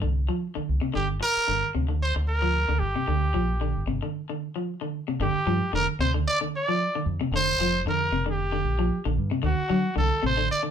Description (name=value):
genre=afrobeat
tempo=113 BPM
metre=4/4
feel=swing 54% on 16ths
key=G minor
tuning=A4 = 443 Hz
part: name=electric guitar at the edge of break-up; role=arpeggios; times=0.0-10.7 s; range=C3 to F#3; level=-28 LUFS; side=equal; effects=none
part: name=deep dub fingered electric bass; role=bass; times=0.0-10.5 s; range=F1 to D3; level=-27 LUFS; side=equal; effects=none
part: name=growling trumpet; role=melody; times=1.0-10.6 s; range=F#4 to D5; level=-26 LUFS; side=right 1 dB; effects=none
room=wet small room reverb, RT60 0.5 s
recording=band playing live in one room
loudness=-23 LUFS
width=side -8 dB against mid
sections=0.0-5.2 A section; 5.2-10.7 B section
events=break 4.1-5.2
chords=0.0 Csus4; 1.0 Gm7; 5.2 G7(no3); 9.4 D7